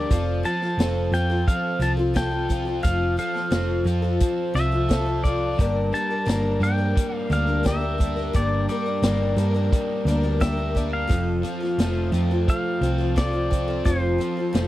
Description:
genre	folk rock and heartland rock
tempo	87 BPM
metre	4/4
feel	straight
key	unclear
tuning	A4 = 440 Hz
part	pedal steel guitar	melody	0.0-14.7 s	C5 to A5	-28 LUFS	left 1 dB	none
part	picked twelve-string acoustic guitar	accompaniment	0.0-14.7 s	G2 to Bb4	-27 LUFS	left 3 dB	none
part	overdriven electric guitar	riff	0.0-14.7 s	F2 to Bb4	-29 LUFS	right 2 dB	spring reverb
part	hollow-body short-scale fingered electric bass	bass	0.0-14.7 s	F1 to G2	-24 LUFS	equal	none
part	vintage drum kit	drums	0.1-14.7 s	hi-hat, kick drum, snare drum	-23 LUFS	equal	none
room	little or no reverb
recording	dry, close 1970s-style studio recording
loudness	-20 LUFS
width	side -15 dB against mid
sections	0.0-14.7 A section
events	none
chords	0.1 F; 5.6 Gm; 11.1 F

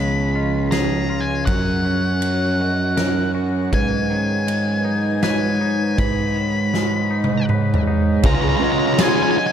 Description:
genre	post-rock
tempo	80 BPM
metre	3/4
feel	straight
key	unclear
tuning	A4 = 440 Hz
part	octave-fuzz lead guitar	melody	0.0-9.5 s	F#5 to B5	-24 LUFS	left 2 dB	distortion, digital delay
part	soft additive organ-like pad	sustained chords	0.0-9.5 s	E#3 to G#5	-28 LUFS	right 2 dB	ensemble chorus, built-in reverb
part	twangy electric guitar	arpeggios	0.0-9.5 s	G#2 to B4	-31 LUFS	left 4 dB	digital delay
part	vibraphone with medium mallets	arpeggios	0.0-9.5 s	A#4 to D#5	-30 LUFS	moving between right 1 dB and right 9 dB	auto-pan, digital delay
part	fuzz picked electric bass	bass	0.0-8.5 s	C#2 to G#2	-21 LUFS	right 1 dB	overdrive
part	huge arena drum kit	drums	0.7-9.2 s	kick drum, ride cymbal, snare drum, toms	-22 LUFS	equal	none
part	distorted electric guitar	riff	8.2-9.4 s	C#3 to E#4	-18 LUFS	equal	distortion
room	small room ambience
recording	dark, warm production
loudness	-17 LUFS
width	side -8 dB against mid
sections	0.0-8.2 A section; 8.2-9.5 B section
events	drum fill 6.7-8.2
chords	0.0 C#; 1.5 F#; 3.7 G#m; 8.2 C#7sus4

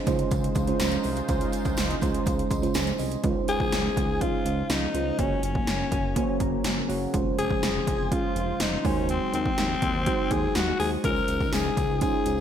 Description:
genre	1980s-style pop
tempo	123 BPM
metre	4/4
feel	straight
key	Db major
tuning	A4 = 439 Hz
part	mellow FM electric piano	accompaniment	0.0-12.4 s	Ab3 to C6	-29 LUFS	right 4 dB	chorus
part	sweeping resonant pad	sustained chords	0.0-12.4 s	Db3 to C5	-34 LUFS	equal	lush chorus
part	fat analog bass	bass	0.1-12.4 s	F1 to Eb2	-31 LUFS	equal	none
part	80s electronic pad drums	drums	0.1-12.4 s	hi-hat, kick drum, snare drum	-28 LUFS	equal	overdrive, gated reverb
part	tambourine	percussion	0.1-3.2, 11.0-12.4 s	none	-45 LUFS	right 8 dB	none
part	breathy alto saxophone	melody	3.5-12.4 s	C4 to Bb4	-28 LUFS	left 4 dB	none
room	moderate plate reverb, RT60 1.9 s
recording	bright 1980s-style digital production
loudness	-23 LUFS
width	side -9 dB against mid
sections	0.0-3.2 A section; 3.2-12.4 B section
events	FM electric piano fill 2.3-3.2, 6.2-7.1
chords	0.0 Dbmaj7; 5.2 Gb; 7.1 Dbmaj7/F; 8.8 Ab7/Eb; 11.0 Dbmaj7

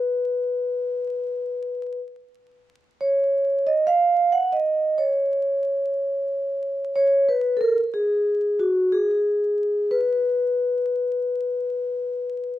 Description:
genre	hip hop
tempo	91 BPM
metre	4/4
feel	swing 62% on 16ths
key	unclear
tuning	A4 = 440 Hz
part	vibraphone with soft mallets	solo	0.0-12.5 s	F#4 to F#5	-20 LUFS	equal	none
room	light reverb, small room ambience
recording	dry, gritty hardware recording, vinyl crackle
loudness	-20 LUFS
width	side -14 dB against mid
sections	0.0-7.6 A section; 7.6-12.6 A section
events	vibraphone solo 0.0-7.6, 7.6-12.6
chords	none

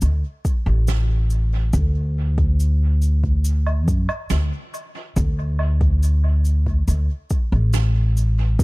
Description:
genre	ambient dub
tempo	70 BPM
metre	4/4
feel	straight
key	D major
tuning	A4 = 440 Hz
part	upright bass	bass	0.0-8.6 s	A1 to F#2	-17 LUFS	equal	none
part	cabasa, snare drum and woodblock	drums	0.0-8.6 s	none	-31 LUFS	right 3 dB	dub echo
part	electronic kick drum	drums	0.4-8.6 s	none	-21 LUFS	equal	overdrive
room	little or no reverb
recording	dark, warm production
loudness	-17 LUFS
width	side -23 dB against mid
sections	0.0-8.6 A section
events	none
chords	none

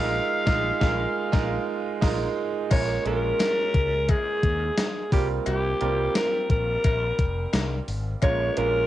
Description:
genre	1980s-style pop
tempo	87 BPM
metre	4/4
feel	straight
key	unclear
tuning	A4 = 440 Hz
part	growling alto saxophone	melody	0.0-8.9 s	G4 to F5	-26 LUFS	left 1 dB	none
part	clear concert grand piano	accompaniment	0.0-8.9 s	G3 to Bb4	-28 LUFS	right 6 dB	cassette tape
part	mellow fretless electric bass	bass	0.0-8.8 s	F1 to Eb2	-29 LUFS	left 1 dB	ensemble chorus
part	gated 80s digital drum machine	drums	0.5-8.7 s	crash cymbal, hi-hat, kick drum, snare drum, tambourine	-25 LUFS	left 1 dB	gated reverb, gated reverb snare, overdrive, cassette tape
part	cowbell	percussion	2.7-8.4 s	none	-38 LUFS	left 9 dB	none
room	light reverb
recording	home recording on cassette, nothing above 10.8 kHz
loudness	-22 LUFS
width	side -13 dB against mid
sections	0.0-2.7 A section; 2.7-8.9 B section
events	band accent 0.0-2.7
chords	0.0 Bb7sus4; 2.7 Bbm7; 5.1 C7sus4; 8.2 Bbm7

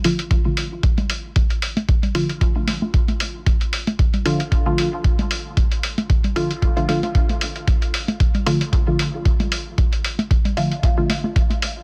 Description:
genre	dub techno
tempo	114 BPM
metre	4/4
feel	swing 55% on 16ths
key	D minor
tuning	A4 = 439 Hz
part	filtered dub chord stab	stabs	0.0-11.2 s	D3 to F4	-26 LUFS	equal	chorus, phaser, vintage 12-bit sampler grit, sidechain pumping, dub echo
part	electronic hi-hat	drums	0.0-11.7 s	none	-29 LUFS	equal	none
part	electronic kick drum	drums	0.3-11.5 s	none	-21 LUFS	equal	overdrive
part	congas	percussion	1.0-11.6 s	none	-27 LUFS	equal	sidechain pumping on perc, dub echo
room	digital ambience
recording	dense, heavily limited modern master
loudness	-20 LUFS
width	mono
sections	0.0-11.8 A section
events	filter sweep on synth stab 0.0-11.8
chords	0.0 Dm

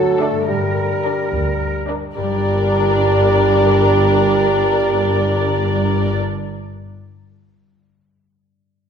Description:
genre	cinematic, playful, whimsical film cue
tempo	70-74 BPM (dotted quarters)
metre	6/8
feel	straight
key	G minor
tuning	A4 = 440 Hz
part	mellow bassoon	accompaniment	0.0-6.2 s	F#3 to A3	-18 LUFS	right 2 dB	none
part	concert harp	arpeggios	0.0-6.7 s	G2 to D5	-27 LUFS	left 5 dB	none
part	muted studio cello section	bass	0.0-6.2 s	G2 to Bb4	-25 LUFS	right 2 dB	none
part	muted studio double bass section	bass	0.0-6.2 s	G1 to G2	-21 LUFS	left 1 dB	none
part	muted studio violin section	melody	0.2-6.2 s	D5	-25 LUFS	left 2 dB	none
part	muted studio violin section	second line	0.2-6.2 s	A4 to Bb4	-23 LUFS	left 5 dB	none
part	muted symphonic viola section	accompaniment	0.2-6.2 s	D4	-25 LUFS	right 2 dB	none
room	wet scoring stage reverb, RT60 1.6 s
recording	minimal, uncompressed stereo recording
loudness	-14 LUFS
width	side -7 dB against mid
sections	0.0-2.2 A section; 2.2-5.4 B section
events	none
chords	0.5 Gm

